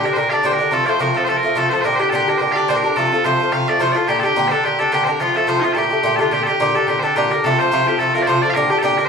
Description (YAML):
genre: celtic folk, Celtic reel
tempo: 215 BPM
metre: 4/4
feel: swing 55% on 8ths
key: G minor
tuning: A4 = 440 Hz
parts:
  - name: loud bright bagpipes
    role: melody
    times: 0.0-9.1 s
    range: Eb4 to F5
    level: -18 LUFS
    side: equal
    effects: none
  - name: Irish bouzouki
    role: accompaniment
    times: 0.0-9.1 s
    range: Bb2 to G4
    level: -17 LUFS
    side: equal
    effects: none
room: moderate recital hall reverb, RT60 1.3 s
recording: small room reverb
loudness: -14 LUFS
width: side -6 dB against mid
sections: 0.0-6.3 A section; 6.3-9.1 A section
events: none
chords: 0.0 Gm; 0.7 F; 1.8 Gm; 3.0 F; 4.1 Gm; 5.2 F; 5.8 Gmadd9; 6.3 Gm; 7.4 F; 8.6 Gm